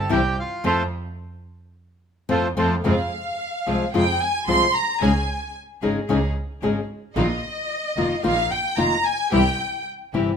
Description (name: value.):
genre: tango.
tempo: 111 BPM.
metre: 4/4.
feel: rubato.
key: F minor.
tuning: A4 = 440 Hz.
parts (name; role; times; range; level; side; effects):
bandoneon; melody; 0.0-2.8 s; F4 to A5; -24 LUFS; right 2 dB; none.
rich chamber string section; stabs; 0.0-10.4 s; A3 to Ab4; -31 LUFS; right 3 dB; none.
clear double bass; bass; 0.0-10.4 s; F1 to F2; -26 LUFS; right 2 dB; none.
nylon-string guitar; accompaniment; 0.1-10.3 s; C3 to Ab4; -22 LUFS; left 3 dB; none.
warm studio violin section; second line; 2.9-9.8 s; Eb5 to C6; -23 LUFS; equal; none.
room: moderate large studio reverb, RT60 1.2 s.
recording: minimal, uncompressed stereo recording.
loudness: -20 LUFS.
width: side -7 dB against mid.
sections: 0.0-2.8 A section; 2.8-10.4 B section.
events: band accent 0.6-2.8; violin section solo 2.8-10.4.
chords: 0.0 C; 0.6 F; 2.8 Fm; 5.0 Dbsus2; 7.2 Bbsus4; 9.3 C.